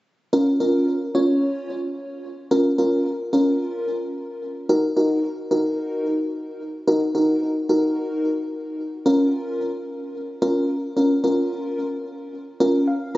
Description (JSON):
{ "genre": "pop", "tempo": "110 BPM", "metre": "4/4", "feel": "straight", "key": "Bb minor", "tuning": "A4 = 440 Hz", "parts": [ { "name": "FM electric piano with soft pad layer", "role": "solo", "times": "0.3-13.2 s", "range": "Db4 to F5", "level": "-20 LUFS", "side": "equal", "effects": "chorus, digital delay" } ], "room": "wet lush hall reverb, RT60 2.5 s", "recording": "recorded on a phone in the room, club reverb, compression, nothing above 7.9 kHz", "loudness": "-20 LUFS", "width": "side -17 dB against mid", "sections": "0.3-9.1 A section; 9.1-13.2 B section", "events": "FM electric piano fill 12.6-13.2", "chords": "0.3 Bbm; 4.7 Ebm; 9.1 Bbm" }